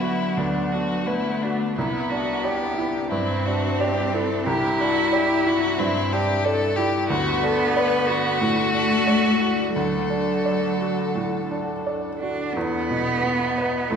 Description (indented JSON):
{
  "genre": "neoclassical piano and strings",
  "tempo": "84-93 BPM",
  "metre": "4/4",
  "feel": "rubato",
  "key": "unclear",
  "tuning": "A4 = 440 Hz",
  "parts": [
    { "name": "rich violin", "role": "melody", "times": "0.0-14.0 s", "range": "D4 to B4", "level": "-25 LUFS", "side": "left 3 dB", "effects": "none" },
    { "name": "rich cello", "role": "second line", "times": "0.0-14.0 s", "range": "F#3 to E4", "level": "-25 LUFS", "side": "right 1 dB", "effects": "none" },
    { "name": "felt-muted upright piano", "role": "accompaniment", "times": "0.0-14.0 s", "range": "C2 to D5", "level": "-25 LUFS", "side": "right 1 dB", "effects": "none" },
    { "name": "warbly tape-like pad", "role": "sustained chords", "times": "0.0-14.0 s", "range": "G3 to F#5", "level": "-33 LUFS", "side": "left 1 dB", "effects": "chorus, built-in reverb" }
  ],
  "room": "wet recital hall reverb, RT60 1.4 s",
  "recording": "recorded in a church or concert hall",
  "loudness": "-20 LUFS",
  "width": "side -6 dB against mid",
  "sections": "0.0-12.6 A section; 12.6-14.0 B section",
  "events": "none",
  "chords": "0.0 Bm/D; 1.8 Cadd9; 7.1 D6; 12.6 E5"
}